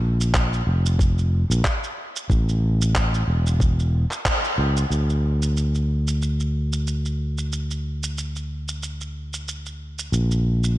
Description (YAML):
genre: organic downtempo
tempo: 92 BPM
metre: 4/4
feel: swing 55% on 16ths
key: unclear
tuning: A4 = 440 Hz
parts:
  - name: sustaining fretless electric bass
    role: bass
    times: 0.0-10.8 s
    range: E1 to D2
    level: -21 LUFS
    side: equal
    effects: none
  - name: electronic shaker and handclaps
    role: drums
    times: 0.2-10.8 s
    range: none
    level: -28 LUFS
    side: right 1 dB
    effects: none
  - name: electronic kick drum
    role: drums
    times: 0.3-4.4 s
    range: none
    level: -22 LUFS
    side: equal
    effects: none
room: light reverb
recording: dark, warm production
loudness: -20 LUFS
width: side -16 dB against mid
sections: 0.0-4.9 A section; 4.9-10.8 B section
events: band accent 4.3-4.6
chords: none